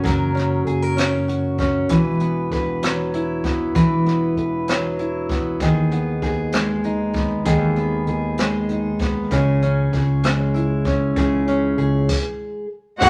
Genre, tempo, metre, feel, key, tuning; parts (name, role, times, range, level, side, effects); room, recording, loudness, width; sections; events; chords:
six-eight pop ballad; 65 BPM (dotted quarters); 6/8; straight; A4 = 440 Hz
fingerpicked steel-string acoustic guitar; accompaniment; 0.0-13.1 s; G#2 to B4; -22 LUFS; equal
sustaining fretless electric bass; bass; 0.1-13.1 s; E1 to D#2; -27 LUFS; equal
jazz brush drum kit; drums; 0.1-13.1 s; crash cymbal, hi-hat, kick drum, rim click; -27 LUFS; equal
warm symphonic violin section; second line; 13.0-13.1 s; F#5; -14 LUFS; equal
muted studio string section; sustained chords; 13.0-13.1 s; D#3 to F#4; -19 LUFS; equal
moderate large studio reverb, RT60 0.8 s; -20 LUFS; mono
0.0-13.0 A section
stop 12.1-13.0
0.0 F#; 1.9 Esus2; 5.6 G#m/D#; 9.3 C#m